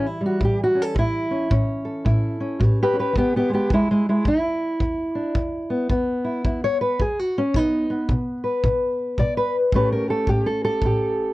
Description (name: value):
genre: acoustic country blues, solo or duo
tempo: 109 BPM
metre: 4/4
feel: swing 62% on 8ths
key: unclear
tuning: A4 = 440 Hz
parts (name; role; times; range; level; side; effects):
- fingerpicked steel-string acoustic guitar; melody; 0.0-11.3 s; E2 to D5; -20 LUFS; equal; none
- kick drum; drums; 0.4-11.0 s; none; -25 LUFS; equal; none
room: light reverb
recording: worn, warbling old tape, cassette tape, warbly pitch drift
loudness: -19 LUFS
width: side -18 dB against mid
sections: 0.0-11.3 A section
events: steel-string acoustic guitar solo 0.0-11.3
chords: 0.0 A7; 3.2 E; 7.6 N.C.; 9.7 A7